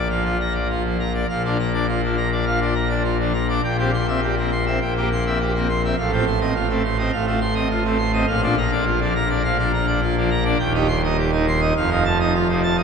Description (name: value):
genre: classical, organ toccata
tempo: 103 BPM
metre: 4/4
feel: straight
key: Bb major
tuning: A4 = 441 Hz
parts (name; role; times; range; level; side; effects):
- pipe organ, full organ; solo; 0.0-12.8 s; Eb1 to C6; -18 LUFS; equal; none
room: wet cathedral reverb, RT60 5.9 s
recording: minimal, uncompressed stereo recording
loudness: -18 LUFS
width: side -6 dB against mid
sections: 0.0-1.3 A section; 1.3-12.8 A section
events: none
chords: 0.0 Bb; 3.6 C7/Bb; 6.0 F7/A; 8.3 Bb; 10.6 Cm/Eb; 11.8 F7